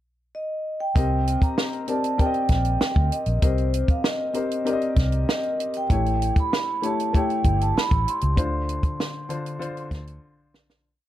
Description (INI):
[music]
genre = lush 1970s-style soul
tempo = 97 BPM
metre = 4/4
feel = straight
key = C dorian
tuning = A4 = 440 Hz
[part]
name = vibraphone with medium mallets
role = melody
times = 0.3-10.5 s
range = C5 to C6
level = -27 LUFS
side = right 2 dB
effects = none
[part]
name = warm concert grand piano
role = accompaniment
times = 1.0-10.9 s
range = D3 to Eb5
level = -28 LUFS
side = left 4 dB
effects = none
[part]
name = vintage muted fingered electric bass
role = bass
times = 1.0-10.2 s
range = G1 to D2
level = -24 LUFS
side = equal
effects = none
[part]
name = compact cocktail drum kit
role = drums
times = 1.0-10.8 s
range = hi-hat, kick drum, snare drum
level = -23 LUFS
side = equal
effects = none
[sound]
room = small room ambience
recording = dark, warm production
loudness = -21 LUFS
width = side -13 dB against mid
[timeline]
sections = 0.0-1.0 pickup bar; 1.0-10.8 verse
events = fade-out 8.4-10.8; drum fill 10.2-10.8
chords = 0.0 N.C.; 1.0 Cm7; 5.9 A7; 8.4 Dm7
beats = 0.34 | 0.95 1.57 2.19 2.81 | 3.42 4.04 4.66 5.28 | 5.90 6.52 7.14 7.75 | 8.37 8.99 9.61 10.23